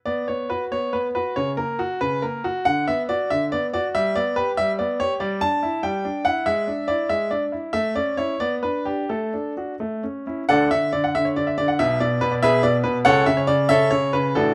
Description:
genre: classical-period piano sonatina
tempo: 93 BPM (dotted quarters)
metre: 6/8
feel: rubato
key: B minor, D major from 5.2 s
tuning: A4 = 439 Hz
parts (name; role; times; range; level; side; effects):
- clear baby grand piano; solo; 0.1-14.5 s; A1 to A5; -22 LUFS; equal; none
room: light reverb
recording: close, detailed microphones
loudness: -22 LUFS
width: mono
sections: 0.1-10.5 A section; 10.5-14.5 B section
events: none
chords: 0.1 B5; 1.4 F#add11/C#; 2.7 Bm/D; 4.0 G; 5.2 Em7/G; 6.5 E7/G#; 7.7 A; 8.4 Bm; 9.1 D/A; 9.8 A; 10.5 D5; 11.8 N.C.; 12.4 Bmadd11; 13.1 A/C#

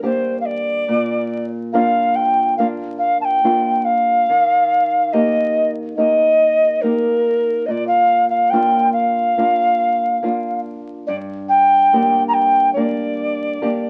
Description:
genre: andean folk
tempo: 71 BPM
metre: 4/4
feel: straight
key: unclear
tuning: A4 = 440 Hz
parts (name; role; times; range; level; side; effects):
- bright alto ocarina; melody; 0.0-13.9 s; Bb4 to Bb5; -17 LUFS; equal; none
- flamenco guitar; accompaniment; 0.0-13.9 s; G2 to G4; -25 LUFS; equal; none
room: moderate studio reverb, RT60 0.9 s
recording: very old 78 rpm record, vinyl crackle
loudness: -17 LUFS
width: mono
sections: 0.0-13.9 A section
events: none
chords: 0.0 Gm; 0.9 Bb; 4.3 Eb; 7.7 Bb; 11.1 Gm

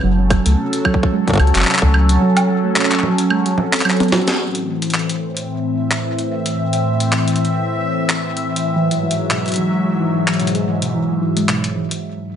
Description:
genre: IDM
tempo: 110 BPM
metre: 4/4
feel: swing 56% on 16ths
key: unclear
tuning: A4 = 440 Hz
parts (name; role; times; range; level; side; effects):
- phased analog pad; sustained chords; 0.0-12.4 s; G#2 to A4; -19 LUFS; left 1 dB; phaser, chorus
- harp-like synth pluck; arpeggios; 0.0-4.4, 8.8-11.9 s; B2 to F#4; -20 LUFS; right 4 dB; chorus, digital delay
- round analog bass; bass; 0.0-2.2 s; F#1 to C#2; -14 LUFS; equal; none
- jungle sampler-style drum kit; drums; 0.0-12.0 s; congas, handclaps, hi-hat, shaker, snare drum, toms, woodblock; -20 LUFS; equal; studio reverb
- electronic kick drum; drums; 0.3-1.9 s; none; -17 LUFS; equal; overdrive, studio reverb
- bubbling stepped-filter texture; texture; 4.4-12.0 s; E5; -26 LUFS; left 2 dB; chorus, built-in reverb
room: moderate plate reverb, RT60 1.0 s, digital ambience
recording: nothing above 10.5 kHz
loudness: -15 LUFS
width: side -9 dB against mid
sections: 0.0-4.4 A section; 4.4-12.4 B section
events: filter sweep on synth pluck 0.0-4.4; drum fill 4.0-4.4; band accent 4.3; break 12.0-12.4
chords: 0.0 F#m; 4.4 Am; 8.8 Eadd9

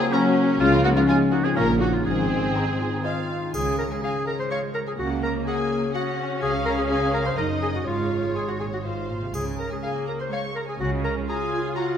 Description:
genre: cinematic, playful, whimsical film cue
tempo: 124 BPM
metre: 3/4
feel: straight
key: Db major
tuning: A4 = 438 Hz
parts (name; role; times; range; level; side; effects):
- marimba with medium mallets; melody; 0.0-3.2 s; Bb3 to F4; -27 LUFS; left 2 dB; none
- muted studio violin section; second line; 0.0-12.0 s; Db4 to Db6; -29 LUFS; left 2 dB; none
- warm oboe; second line; 0.0-3.3 s; Db4 to Bb4; -29 LUFS; right 2 dB; none
- muted studio viola section; accompaniment; 0.0-12.0 s; Gb3 to F4; -30 LUFS; right 2 dB; none
- mellow French horn section; sustained chords; 0.0-3.3 s; Eb3 to Db4; -29 LUFS; left 1 dB; none
- concert harp; arpeggios; 0.0-12.0 s; Gb2 to C6; -30 LUFS; left 6 dB; none
- muted studio violin section; melody; 0.1-11.8 s; C5 to Bb5; -35 LUFS; left 2 dB; none
- clear clarinet; second line; 0.1-12.0 s; Db4 to Db5; -28 LUFS; equal; none
- mellow hollow flute section; second line; 0.1-3.1 s; Eb5 to Bb5; -36 LUFS; equal; none
- mellow tuba; bass; 0.6-2.5 s; Ab1 to Db2; -29 LUFS; right 2 dB; none
- muted studio cello section; bass; 0.6-11.2 s; Gb2 to Db3; -32 LUFS; right 3 dB; none
- muted studio double bass section; bass; 0.6-11.2 s; Gb1 to Db2; -32 LUFS; right 3 dB; none
- triangle; percussion; 3.5-4.5, 9.3-10.3 s; none; -44 LUFS; left 2 dB; none
room: wet scoring stage reverb, RT60 1.8 s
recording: none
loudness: -21 LUFS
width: side -8 dB against mid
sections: 0.0-3.5 A section; 3.5-12.0 B section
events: none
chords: 0.0 Gb/Db; 0.6 Db; 1.6 Bbm; 2.1 Ab; 3.5 Db; 5.0 Gb/Db; 6.4 Db; 7.4 Ebm/Gb; 7.9 Db/Ab; 8.8 Ab; 9.3 Db; 10.8 Gb/Db

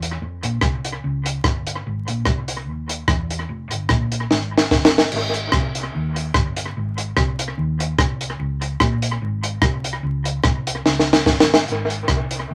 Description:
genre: ska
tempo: 147 BPM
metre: 4/4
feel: swing 54% on 8ths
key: Ab major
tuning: A4 = 439 Hz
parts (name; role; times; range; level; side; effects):
- hollow-body short-scale fingered electric bass; bass; 0.0-12.5 s; F1 to F2; -27 LUFS; equal; none
- compact cocktail drum kit; drums; 0.0-12.4 s; crash cymbal, hi-hat, kick drum, rim click, snare drum; -20 LUFS; equal; dub echo
room: moderate small room ambience, RT60 0.5 s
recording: vinyl crackle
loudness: -21 LUFS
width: mono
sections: 0.0-5.1 A section; 5.1-12.5 B section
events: drum fill 4.3-5.1, 10.9-11.7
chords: none

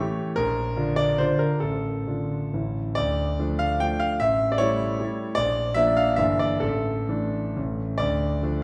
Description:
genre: classical, romantic triple-time dance for piano with dotted rhythms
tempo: 121-164 BPM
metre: 3/4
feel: rubato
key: D minor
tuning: A4 = 440 Hz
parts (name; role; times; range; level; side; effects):
- warm concert grand piano; solo; 0.0-8.6 s; G1 to G5; -25 LUFS; equal; none
room: wet recital hall reverb, RT60 1.6 s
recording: heard from further back in the room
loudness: -25 LUFS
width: mono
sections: 0.0-3.0 A section; 3.0-8.6 A section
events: none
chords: 0.4 Bb; 1.6 Dm/A; 2.5 A; 3.0 Dm; 4.2 A7; 5.4 Bb; 6.2 Em7b5/G; 6.6 Asus4; 7.6 A; 8.0 Dm

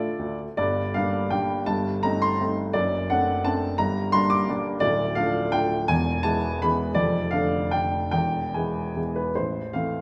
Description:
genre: classical, romantic triple-time dance for piano with dotted rhythms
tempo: 138-186 BPM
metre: 3/4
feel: rubato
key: G minor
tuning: A4 = 441 Hz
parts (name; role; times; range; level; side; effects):
- warm baby grand piano; solo; 0.0-10.0 s; D1 to D6; -25 LUFS; equal; none
room: wet recital hall reverb, RT60 1.8 s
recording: none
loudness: -25 LUFS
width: mono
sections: 0.6-9.4 A section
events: none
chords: 0.0 Dm; 0.6 Gm; 1.7 Am7b5/G; 2.7 D7/F#; 3.8 Gm; 4.8 Dm; 5.9 E; 7.0 Dm/F; 8.1 E; 9.4 Am

